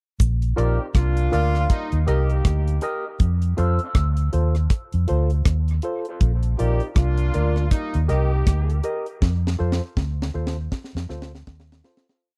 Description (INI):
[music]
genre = dub reggae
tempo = 80 BPM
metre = 4/4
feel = swing 59% on 16ths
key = unclear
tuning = A4 = 439 Hz
[part]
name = vintage muted fingered electric bass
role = bass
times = 0.2-11.8 s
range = Bb1 to F2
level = -23 LUFS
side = equal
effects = none
[part]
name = deep reggae drum kit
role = drums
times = 0.2-12.3 s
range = hi-hat, kick drum, rim click, snare drum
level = -23 LUFS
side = equal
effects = none
[part]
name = cabasa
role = percussion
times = 0.2-0.4 s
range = none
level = -40 LUFS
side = equal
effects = none
[part]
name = warm horn section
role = second line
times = 0.6-8.8 s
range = G3 to G4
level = -32 LUFS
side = equal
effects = dub echo
[part]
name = electric guitar with an envelope filter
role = accompaniment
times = 0.6-3.8 s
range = C4 to Eb5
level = -36 LUFS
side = equal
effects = dub echo
[part]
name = percussive organ stab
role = stabs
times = 0.6-12.1 s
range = F4 to Eb5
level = -32 LUFS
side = equal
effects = chorus, dub echo
[part]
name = bright tenor saxophone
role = melody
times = 1.3-1.7 s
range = F4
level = -32 LUFS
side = equal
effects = dub echo
[sound]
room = little or no reverb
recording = dry, close 1970s-style studio recording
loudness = -22 LUFS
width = mono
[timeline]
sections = 0.2-12.2 A section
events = part muted 0.2-12.2; fade-out 9.2-12.2; drum fill 9.2-12.2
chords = 0.2 Bb; 1.7 Eb; 3.2 F; 6.2 Bb; 7.7 Eb; 9.2 F